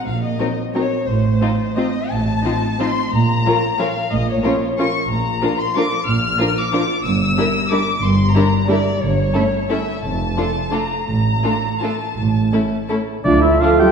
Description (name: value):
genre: classical, orchestral ballroom waltz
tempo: 154-198 BPM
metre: 3/4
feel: rubato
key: Bb minor, D minor from 5.1 s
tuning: A4 = 437 Hz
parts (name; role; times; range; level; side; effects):
- muted chamber violin section; melody; 0.0-13.7 s; F4 to F6; -22 LUFS; left 4 dB; none
- muted chamber cello section; bass; 0.1-13.9 s; F2 to G3; -23 LUFS; right 1 dB; none
- muted studio double bass section; bass; 0.1-13.6 s; F1 to D2; -22 LUFS; right 2 dB; none
- muted chamber violin section; second line; 0.4-13.7 s; A3 to Bb4; -25 LUFS; left 2 dB; none
- muted chamber viola section; accompaniment; 0.4-13.9 s; F3 to G4; -23 LUFS; right 1 dB; none
- mellow concert flute; second line; 13.2-13.9 s; D5 to G5; -20 LUFS; left 1 dB; none
- warm oboe; second line; 13.2-13.9 s; D5 to G5; -19 LUFS; right 1 dB; none
- clear clarinet; second line; 13.3-13.9 s; F4; -19 LUFS; right 4 dB; none
- clear bassoon; accompaniment; 13.3-13.9 s; A3; -22 LUFS; right 2 dB; none
- warm French horn section; sustained chords; 13.3-13.9 s; F4 to A4; -18 LUFS; equal; none
- timpani; percussion; 13.3-13.8 s; D3; -24 LUFS; left 1 dB; none
room: wet scoring stage reverb, RT60 1.6 s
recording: heard from further back in the room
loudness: -16 LUFS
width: side -6 dB against mid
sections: 0.0-13.2 A section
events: none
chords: 0.0 Cm7b5/Bb; 1.1 F7/A; 3.1 Bbm; 5.1 Bb; 7.0 Em7b5/G; 9.0 A7/G; 10.0 Dm/F; 11.1 D5/A; 12.2 A; 13.2 Dm